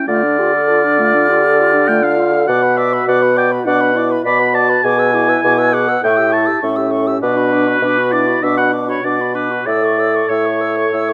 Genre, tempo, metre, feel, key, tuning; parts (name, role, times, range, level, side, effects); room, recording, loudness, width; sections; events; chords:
quick classical-period movement for wind quintet; 100 BPM; 4/4; straight; A4 = 440 Hz
warm oboe; second line; 0.0-11.1 s; B4 to B5; -19 LUFS; equal
mellow French horn; accompaniment; 0.0-11.1 s; C#4 to A4; -23 LUFS; equal
warm clarinet; accompaniment; 0.0-11.1 s; A3 to D5; -25 LUFS; equal
silver concert flute; melody; 0.1-11.1 s; B5 to F6; -25 LUFS; equal
mellow bassoon; bass; 0.1-11.1 s; A2 to D3; -19 LUFS; equal
light reverb; close, detailed microphones; -14 LUFS; mono
0.0-11.1 A section
0.1 Dm; 2.5 Bm; 4.8 E7/B; 6.0 A7; 7.2 Bm; 9.7 A